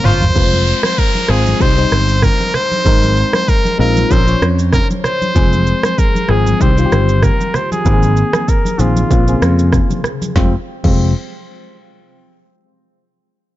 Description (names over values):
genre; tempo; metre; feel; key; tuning
afrobeats; 96 BPM; 4/4; swing 55% on 16ths; F minor; A4 = 440 Hz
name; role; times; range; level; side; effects
brilliant trumpet; melody; 0.0-11.1 s; C4 to C5; -18 LUFS; equal; low-pass filter, tape echo
FM electric piano; accompaniment; 0.0-11.1 s; C3 to Db5; -19 LUFS; left 4 dB; chorus, low-pass filter
picked electric bass; bass; 0.0-11.1 s; F1 to F2; -14 LUFS; equal; none
afro-pop drum kit; drums; 0.0-11.0 s; crash cymbal, kick drum, rim click, shaker, snare drum, toms; -16 LUFS; equal; vintage 12-bit sampler grit
congas; percussion; 0.0-11.1 s; none; -23 LUFS; right 2 dB; none
downlifter; sound effects; 0.4-5.4 s; none; -27 LUFS; equal; none
room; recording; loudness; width
digital ambience; nothing above 7.7 kHz; -11 LUFS; side -15 dB against mid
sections
0.4-10.4 A section; 10.4-12.9 B section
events
drum fill 0.0-0.4; filter sweep 0.4-10.4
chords
0.4 Fm; 1.6 Cm; 2.9 Abadd9; 4.1 Bbmadd9; 5.4 Fm; 6.6 Cm; 7.9 Abadd9; 9.1 Bbmadd9; 10.4 Fm